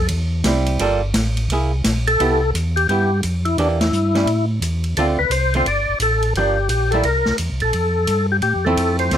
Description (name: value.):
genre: soul jazz organ trio.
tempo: 173 BPM.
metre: 4/4.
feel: swing 64% on 8ths.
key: C major.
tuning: A4 = 440 Hz.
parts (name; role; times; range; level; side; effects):
percussive tonewheel organ; melody; 0.0-9.2 s; D4 to D5; -19 LUFS; left 2 dB; slow rotary speaker, overdrive, chorus vibrato.
mellow tonewheel organ; bass; 0.0-9.2 s; G1 to A2; -20 LUFS; equal; chorus vibrato, slow rotary speaker.
vintage drum kit; drums; 0.1-9.2 s; hi-hat, ride cymbal, snare drum; -26 LUFS; equal; none.
archtop guitar, miked and amplified; accompaniment; 0.5-9.2 s; D3 to A4; -21 LUFS; right 4 dB; none.
room: light reverb.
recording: close, detailed microphones.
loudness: -16 LUFS.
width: side -10 dB against mid.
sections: 0.0-2.2 A section; 2.2-9.2 B section.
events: tonewheel organ solo 0.0-2.2; band accent 3.7.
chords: 0.0 Am7 (rootless); 0.8 Gm9; 1.5 Caug7; 2.2 Cmaj7; 3.6 Em7b5; 4.3 A5; 5.0 Dm7; 6.3 Gm7; 7.0 C7; 7.7 Fmaj7.